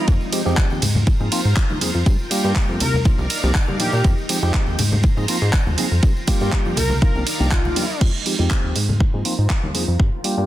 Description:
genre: filtered disco house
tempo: 121 BPM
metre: 4/4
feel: swing 53% on 16ths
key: unclear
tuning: A4 = 439 Hz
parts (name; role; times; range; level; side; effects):
- analog synth brass; melody; 0.0-8.0 s; F4 to Bb4; -27 LUFS; left 1 dB; chorus, cassette tape, sidechain pumping, low-pass filter
- tine electric piano; accompaniment; 0.0-10.5 s; F3 to Ab4; -25 LUFS; equal; phaser, sidechain pumping, low-pass filter
- string machine, full ensemble; sustained chords; 0.0-10.5 s; Ab3 to Bb5; -29 LUFS; equal; ensemble chorus, vintage 12-bit sampler grit, sidechain pumping, low-pass filter
- plucky analog bass; bass; 0.1-10.5 s; C2 to Bb2; -21 LUFS; equal; sidechain pumping, low-pass filter
- electronic kick drum; drums; 0.1-10.1 s; none; -18 LUFS; equal; none
- house drum kit; drums; 0.1-10.3 s; crash cymbal, handclaps, hi-hat, ride cymbal; -25 LUFS; right 3 dB; sidechain pumping on hats, soft clipping on snare, sidechain pumping on cymbals
- tambourine and congas; percussion; 0.1-10.5 s; none; -28 LUFS; left 1 dB; sidechain pumping on perc, low-pass filter on perc
room: digital ambience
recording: dense, heavily limited modern master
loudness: -16 LUFS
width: side -14 dB against mid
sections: 0.0-8.0 A section; 8.0-10.5 B section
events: drop 0.0-8.0; filter sweep 8.0-10.5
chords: 0.1 Fm9; 0.8 Ab69; 2.1 Gm7; 2.8 Cm11; 4.0 Fm9; 4.8 Ab69; 6.0 Gm7; 6.8 Cm11; 8.0 Fm9; 8.8 Ab69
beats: | 0.08 0.57 1.07 1.57 | 2.06 2.56 3.05 3.55 | 4.04 4.54 5.04 5.53 | 6.03 6.53 7.02 7.52 | 8.01 8.51 9.00 9.50 | 10.00

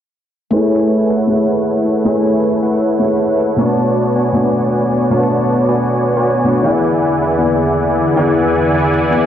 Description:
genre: future bass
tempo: 157 BPM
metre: 4/4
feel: half-time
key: A major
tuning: A4 = 437 Hz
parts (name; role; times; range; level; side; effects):
- felt-muted upright piano; accompaniment; 0.5-9.3 s; B2 to C#6; -16 LUFS; left 2 dB; digital delay
- supersaw chords; riff; 0.5-9.3 s; E3 to A5; -14 LUFS; equal; cassette tape, low-pass filter, digital delay
- airy breathy pad; sustained chords; 6.6-9.3 s; E2 to G#4; -21 LUFS; right 2 dB; chorus
- electronic hi-hat; drums; 6.6-9.2 s; none; -51 LUFS; right 3 dB; none
room: light reverb, digital ambience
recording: played on a big sound system in a bare room, large studio reverb, low-pass filter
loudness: -12 LUFS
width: side -10 dB against mid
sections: 0.5-9.3 A section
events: filter sweep on supersaw synth 0.5-9.3; filter sweep 0.5-9.3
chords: 0.5 Amaj7; 3.6 Bm9; 6.6 E7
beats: | 0.53 0.91 1.29 1.67 | 2.06 2.44 2.82 3.20 | 3.58 3.96 4.35 4.73 | 5.11 5.49 5.88 6.26 | 6.64 7.02 7.41 7.79 | 8.17 8.55 8.93

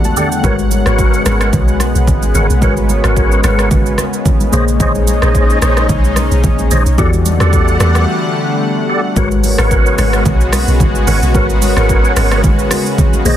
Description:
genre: amapiano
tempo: 110 BPM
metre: 4/4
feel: swing 55% on 16ths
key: unclear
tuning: A4 = 438 Hz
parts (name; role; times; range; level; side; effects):
- mellow FM electric piano; accompaniment; 0.0-13.4 s; E3 to A5; -19 LUFS; left 4 dB; chorus
- lush unison pad; sustained chords; 0.0-13.4 s; E2 to F#5; -18 LUFS; equal; chorus, sidechain pumping
- deep house drum kit; drums; 0.0-13.4 s; hi-hat, kick drum, rim click, shaker; -15 LUFS; equal; soft clipping on snare
- congas; percussion; 0.0-13.4 s; none; -22 LUFS; right 3 dB; none
- tonewheel organ; stabs; 0.2-13.4 s; G4 to F#5; -19 LUFS; right 1 dB; overdrive, chorus vibrato, slow rotary speaker, digital delay
- deep log drum bass; bass; 0.4-13.4 s; G#1 to E2; -14 LUFS; equal; none
room: little or no reverb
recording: dense, heavily limited modern master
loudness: -10 LUFS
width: side -11 dB against mid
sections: 0.0-9.2 A section; 9.2-13.4 B section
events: break 8.1-9.2; drop 9.2-13.4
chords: 0.4 G#m11; 4.5 A#m11; 7.0 Em11; 9.2 G#m11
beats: | 0.44 0.98 1.53 2.08 | 2.62 3.17 3.71 4.26 | 4.80 5.35 5.89 6.44 | 6.98 7.53 8.07 8.62 | 9.17 9.71 10.26 10.80 | 11.35 11.89 12.44 12.98

